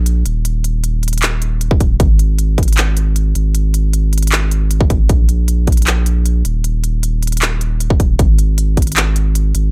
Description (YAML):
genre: future bass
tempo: 155 BPM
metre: 4/4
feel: half-time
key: unclear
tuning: A4 = 440 Hz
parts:
  - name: saturated sub bass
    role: bass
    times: 0.0-9.7 s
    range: D#1 to A#1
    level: -17 LUFS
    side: equal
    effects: sidechain pumping
  - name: trap drum kit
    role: drums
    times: 0.1-9.6 s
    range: handclaps, hi-hat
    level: -21 LUFS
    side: equal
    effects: none
  - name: electronic kick drum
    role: drums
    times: 1.7-8.9 s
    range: none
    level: -15 LUFS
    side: equal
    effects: none
room: little or no reverb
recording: none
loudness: -15 LUFS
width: mono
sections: 0.0-9.7 A section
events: none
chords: none